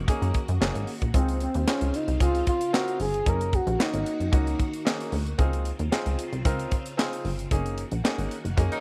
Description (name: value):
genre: early-eighties boogie funk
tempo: 113 BPM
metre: 4/4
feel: straight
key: Db major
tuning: A4 = 441 Hz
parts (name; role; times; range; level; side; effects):
- phased string machine; sustained chords; 0.0-8.8 s; Db3 to Gb4; -42 LUFS; equal; ensemble chorus, phaser
- plucky analog bass; bass; 0.0-8.7 s; Gb1 to Gb2; -30 LUFS; equal; none
- clear baby grand piano; accompaniment; 0.1-8.8 s; Bb3 to Bb4; -36 LUFS; equal; none
- tight funk drum kit; drums; 0.1-8.8 s; handclaps, hi-hat, kick drum, snare drum; -29 LUFS; equal; none
- expressive synth lead; melody; 1.2-4.9 s; C4 to Bb4; -30 LUFS; equal; chorus, slapback echo
- warm horn section; second line; 8.7-8.8 s; Gb3 to Bb4; -30 LUFS; equal; none
room: small room ambience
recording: none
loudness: -26 LUFS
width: mono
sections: 0.0-8.8 A section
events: band accent 7.5-8.8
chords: 0.0 Gb6; 1.1 Dbmaj7; 3.3 Gb6; 5.4 Dbmaj7; 7.5 Gb6